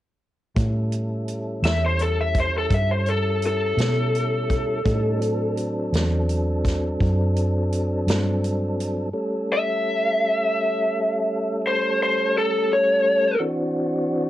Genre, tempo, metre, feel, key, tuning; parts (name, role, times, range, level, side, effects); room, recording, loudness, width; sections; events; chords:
slow blues; 56 BPM (dotted quarters); 12/8; straight; A mixolydian; A4 = 440 Hz
tonewheel organ; sustained chords; 0.6-14.3 s; E3 to A4; -26 LUFS; equal; slow rotary speaker, overdrive
vintage muted fingered electric bass; bass; 0.6-9.1 s; E2 to B2; -24 LUFS; equal
natural country drum kit; drums; 0.6-9.0 s; hi-hat, kick drum, snare drum; -26 LUFS; equal; cassette tape
lead guitar through a small cranked amp; melody; 1.7-13.4 s; A4 to E5; -21 LUFS; left 1 dB; overdrive, cassette tape
little or no reverb; home recording on cassette; -20 LUFS; side -14 dB against mid
0.6-9.1 A section; 9.1-14.3 B section
0.6 A7; 4.9 D7; 9.1 A7; 13.4 D9